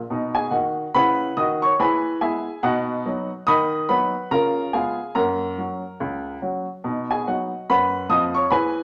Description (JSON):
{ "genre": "jazz, stride piano", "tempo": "142 BPM", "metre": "4/4", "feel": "swing 60% on 8ths", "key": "B major", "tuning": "A4 = 440 Hz", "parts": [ { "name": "warm upright piano", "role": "solo", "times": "0.1-8.8 s", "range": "C#2 to D#6", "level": "-22 LUFS", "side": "equal", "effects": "none" } ], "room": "wet studio reverb, RT60 0.9 s", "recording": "none", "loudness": "-22 LUFS", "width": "mono", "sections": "0.1-8.8 A section", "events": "none", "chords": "0.1 B; 1.8 E; 2.6 B; 3.5 B/D#; 4.3 C#7; 5.1 F#; 6.8 B" }